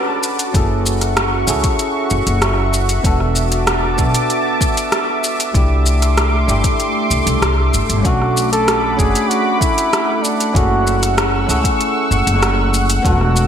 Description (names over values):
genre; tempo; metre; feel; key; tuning
sunset chillout; 96 BPM; 4/4; straight; unclear; A4 = 441 Hz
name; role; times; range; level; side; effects
bell-like tine electric piano; accompaniment; 0.0-13.5 s; A3 to A4; -22 LUFS; right 1 dB; auto-pan, vintage 12-bit sampler grit, digital delay
lush unison pad; sustained chords; 0.0-13.5 s; A3 to E6; -20 LUFS; equal; chorus
deep house drum kit; drums; 0.2-13.5 s; hi-hat, rim click, shaker; -20 LUFS; equal; studio reverb, gated reverb
upright bass; bass; 0.5-13.5 s; E1 to C#2; -18 LUFS; equal; none
electronic kick drum; drums; 0.5-13.2 s; none; -18 LUFS; equal; studio reverb
breathy flugelhorn; melody; 8.1-13.5 s; D4 to A4; -19 LUFS; equal; digital delay
room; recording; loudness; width
moderate lush hall reverb, RT60 1.7 s; bright 1980s-style digital production, faint mains hum; -13 LUFS; side -8 dB against mid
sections
0.0-13.5 A section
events
none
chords
0.0 Bm7; 0.5 F#m7; 3.0 E9sus4; 5.5 C69; 8.0 Bm7; 10.5 F#m7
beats
| 0.55 1.17 1.80 2.42 | 3.05 3.67 4.30 4.92 | 5.55 6.17 6.80 7.42 | 8.05 8.67 9.30 9.92 | 10.55 11.17 11.80 12.42 | 13.05